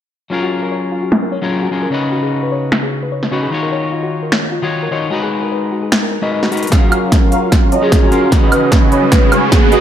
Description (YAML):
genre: future bass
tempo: 150 BPM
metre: 4/4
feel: swing 54% on 16ths, half-time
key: unclear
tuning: A4 = 440 Hz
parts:
  - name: electric guitar at the edge of break-up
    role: accompaniment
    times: 0.3-9.8 s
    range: C#3 to E#5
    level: -18 LUFS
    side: left 2 dB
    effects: warbly pitch drift, sidechain pumping, ping-pong delay
  - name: thumb-piano-like synth pluck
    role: arpeggios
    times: 0.3-6.7 s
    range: E#4 to D#5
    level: -22 LUFS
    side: left 4 dB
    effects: chorus, sidechain pumping, ping-pong delay
  - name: big-room dance drum kit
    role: drums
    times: 1.1-9.8 s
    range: finger snaps, hi-hat, snare drum, woodblock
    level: -17 LUFS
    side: right 1 dB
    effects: low-pass filter on snare, low-pass filter on hats, low-pass filter on perc, low-pass filter on room
  - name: big bright polysynth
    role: riff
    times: 6.7-9.8 s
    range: C#4 to G#5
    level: -16 LUFS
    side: right 3 dB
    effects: lush chorus, sidechain pumping
  - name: electronic kick drum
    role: drums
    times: 6.7-9.6 s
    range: none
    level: -12 LUFS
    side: equal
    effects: none
  - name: riser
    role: sound effects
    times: 7.8-9.8 s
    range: none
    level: -21 LUFS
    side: left 2 dB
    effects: none
  - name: marimba with soft mallets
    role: melody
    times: 7.7-9.8 s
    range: F#4 to C#5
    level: -17 LUFS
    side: right 1 dB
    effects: sidechain pumping, ping-pong delay
room: light reverb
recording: none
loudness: -12 LUFS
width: side -10 dB against mid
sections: 0.3-6.7 A section; 6.7-9.8 B section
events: filter sweep on drum 0.3-6.7; filter sweep on synth arpeggio sound 0.3-6.7; drum fill 6.5, 6.7-9.8; build-up 6.7-9.8; riser 7.8-9.8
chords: 0.3 F#maj7; 1.9 C#9sus4; 3.5 D#m9; 5.1 G#m9; 6.7 F#maj7; 8.3 C#9sus4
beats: | 0.32 0.72 1.12 1.52 | 1.92 2.32 2.72 3.12 | 3.52 3.92 4.32 4.72 | 5.12 5.52 5.92 6.32 | 6.72 7.12 7.52 7.92 | 8.32 8.72 9.12 9.52